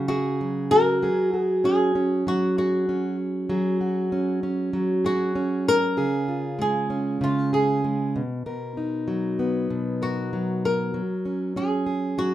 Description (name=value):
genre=pop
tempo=97 BPM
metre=4/4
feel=straight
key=F# major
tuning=A4 = 440 Hz
part: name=flamenco guitar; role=melody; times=0.0-12.3 s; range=E#4 to A#4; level=-25 LUFS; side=left 1 dB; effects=none
part: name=fingerpicked plugged-in steel-string acoustic guitar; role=accompaniment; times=0.0-12.3 s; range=B2 to A#4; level=-23 LUFS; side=right 1 dB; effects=none
room=wet studio ambience, RT60 0.5 s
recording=rough home demo mix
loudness=-22 LUFS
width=side -13 dB against mid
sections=0.0-1.0 A section; 1.0-10.9 B section; 10.9-12.3 C section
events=none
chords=0.0 C#sus4; 1.0 F#sus2; 6.0 C#; 8.1 Bmaj7; 10.9 F#sus2